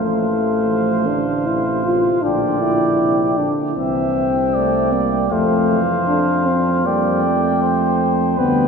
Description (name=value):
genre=classical, brass quintet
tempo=78 BPM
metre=4/4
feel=straight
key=F major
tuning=A4 = 440 Hz
part: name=dark trumpet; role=melody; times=0.0-8.7 s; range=F5 to G5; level=-24 LUFS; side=left 5 dB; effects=none
part: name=clear flugelhorn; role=second line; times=0.0-8.7 s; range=B4 to E5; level=-23 LUFS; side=right 4 dB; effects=none
part: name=clear trombone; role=accompaniment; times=0.0-8.7 s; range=C3 to A3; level=-26 LUFS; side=right 3 dB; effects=none
part: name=mellow French horn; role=accompaniment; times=0.0-8.7 s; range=A3 to F4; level=-19 LUFS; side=left 2 dB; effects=none
part: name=mellow tuba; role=bass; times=0.0-8.7 s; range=A1 to F2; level=-23 LUFS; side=right 4 dB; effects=none
room=wet cathedral reverb, RT60 4.3 s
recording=recorded in a church or concert hall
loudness=-15 LUFS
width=side -5 dB against mid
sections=0.0-8.7 A section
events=none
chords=0.0 F/A; 2.2 Gm/Bb; 3.8 C; 5.3 F5; 6.9 G5/F